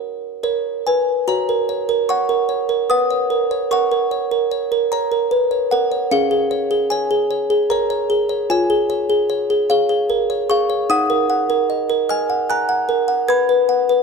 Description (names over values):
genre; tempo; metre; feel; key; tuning
classical, lullaby for music box; 75 BPM; 3/4; rubato; F# major; A4 = 442 Hz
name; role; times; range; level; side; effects
music box; solo; 0.0-14.0 s; C#4 to G#6; -16 LUFS; equal; none
room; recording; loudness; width
moderate scoring stage reverb, RT60 1.6 s; dark, warm production; -16 LUFS; side -5 dB against mid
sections
0.0-1.3 A section; 1.3-14.0 B section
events
none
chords
0.0 F#; 3.7 F#/A#; 6.1 C#; 8.5 C#/E#; 10.9 D#m; 13.3 G#m7/B